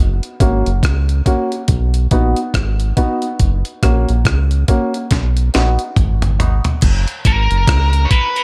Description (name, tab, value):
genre	dub reggae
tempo	70 BPM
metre	4/4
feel	swing 60% on 16ths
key	F# major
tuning	A4 = 440 Hz
part	round analog bass	bass	0.0-8.1 s	F#1 to C#2	-17 LUFS	equal	none
part	breakbeat sampler-style drum kit	drums	0.2-8.4 s	crash cymbal, hi-hat, kick drum, rim click, snare drum, toms	-18 LUFS	equal	none
part	dark upright piano	stabs	0.4-8.4 s	A#3 to F#4	-24 LUFS	equal	high-pass filter, dub echo
part	congas	percussion	6.8-8.4 s	none	barely audible	none	none
part	smooth overdriven lead guitar	melody	7.3-8.4 s	A#4 to C#5	-20 LUFS	equal	dub echo
part	electric guitar at the edge of break-up	accompaniment	7.3-8.4 s	A#3 to A#4	-25 LUFS	equal	spring reverb, high-pass filter, dub echo
room	light reverb, digital ambience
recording	none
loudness	-15 LUFS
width	mono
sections	0.0-6.8 A section; 6.8-8.4 B section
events	break 0.0-6.8; filter sweep 3.4-8.4; drum fill 5.1-6.8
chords	0.0 F#; 1.7 B; 3.4 F#; 5.1 B; 6.8 F#